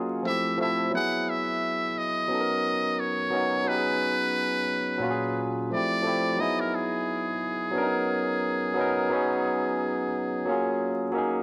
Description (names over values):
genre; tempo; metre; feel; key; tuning
hip hop; 88 BPM; 4/4; swing 61% on 16ths; F# major; A4 = 441 Hz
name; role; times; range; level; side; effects
barky tine electric piano; accompaniment; 0.0-11.4 s; A#2 to F#5; -29 LUFS; equal; low-pass filter
trumpet with metal mute; melody; 0.3-11.2 s; G#4 to F#5; -31 LUFS; equal; low-pass filter
room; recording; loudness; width
light reverb, small room ambience; vinyl crackle; -27 LUFS; mono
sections
0.0-11.4 A section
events
none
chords
0.2 Fmaj7; 0.9 E; 2.3 Bmaj9; 3.7 C#9sus4; 5.0 F#maj9; 5.7 Fmaj7; 6.4 Emaj7; 7.7 Bmaj9; 9.1 C#9sus4; 10.5 F#maj9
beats
0.24 | 0.92 1.61 2.29 2.97 | 3.65 4.33 5.01 5.70 | 6.38 7.06 7.74 8.42 | 9.11 9.79 10.47 11.15